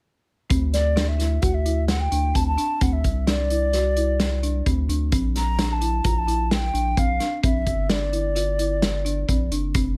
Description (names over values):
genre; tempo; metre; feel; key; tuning
progressive instrumental, band music in an uneven meter; 130 BPM; 5/4; straight; unclear; A4 = 441 Hz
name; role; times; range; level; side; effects
folk marimba with medium mallets; arpeggios; 0.5-10.0 s; C4 to F#4; -31 LUFS; equal; none
round analog bass; bass; 0.5-10.0 s; F1 to D2; -26 LUFS; equal; none
vintage drum kit; drums; 0.5-9.9 s; hi-hat, kick drum, snare drum; -27 LUFS; equal; none
baroque flute; melody; 0.7-9.5 s; D5 to Bb5; -28 LUFS; equal; none
room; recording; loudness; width
light reverb, studio ambience; none; -22 LUFS; mono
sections
0.5-10.0 A section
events
none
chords
0.5 N.C.; 5.1 Bb